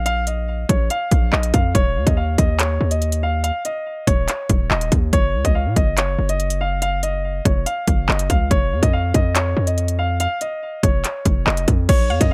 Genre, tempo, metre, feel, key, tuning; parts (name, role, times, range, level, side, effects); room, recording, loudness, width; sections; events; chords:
hip hop, drill; 142 BPM; 4/4; half-time; A4 = 440 Hz
dark concert grand piano; melody; 0.0-12.3 s; Db5 to F5; -26 LUFS; equal; digital delay
hard-hitting 808-style bass; bass; 0.0-12.3 s; Eb1 to Bb2; -23 LUFS; equal
drill drum kit; drums; 0.1-12.3 s; crash cymbal, handclaps, hi-hat, kick drum; -21 LUFS; equal
mallet-like synth pluck; second line; 12.1-12.3 s; F5; -28 LUFS; equal; chorus
little or no reverb; -19 LUFS; mono
0.0-11.9 A section
0.0 Bb5; 1.7 Dbsus2/Eb; 5.1 Gb5; 8.5 Dbadd9/F